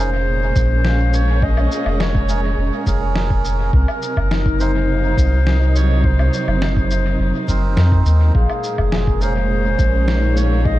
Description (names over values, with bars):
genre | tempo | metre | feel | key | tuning
ambient dub | 104 BPM | 4/4 | straight | Bb minor | A4 = 444 Hz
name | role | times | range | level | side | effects
mellow clarinet | melody | 0.0-10.8 s | Ab4 to Eb5 | -24 LUFS | equal | dub echo
warm symphonic string section | sustained chords | 0.0-10.8 s | Bb2 to Bb4 | -24 LUFS | right 2 dB | none
concert harp | arpeggios | 0.0-10.8 s | Db4 to Ab5 | -30 LUFS | left 7 dB | dub echo
melodica | stabs | 0.0-9.3 s | C4 to Bb4 | -30 LUFS | right 6 dB | dub echo
soft dub sub bass | bass | 0.0-10.8 s | F1 to F2 | -16 LUFS | equal | none
electronic kick drum | drums | 0.6-10.8 s | none | -20 LUFS | equal | small room ambience
electronic shaker, snare drum and woodblock | drums | 0.6-10.5 s | none | -28 LUFS | left 1 dB | small room ambience, dub echo
room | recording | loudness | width
little or no reverb | dark, warm production | -14 LUFS | side -15 dB against mid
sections
0.0-10.8 A section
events
none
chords
0.0 Bbm7; 3.7 Cm7b5; 8.3 Bbm7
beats
0.27 0.85 | 1.42 2.00 2.58 3.15 | 3.73 4.31 4.89 5.46 | 6.04 6.62 7.19 7.77 | 8.35 8.92 9.50 10.08 | 10.65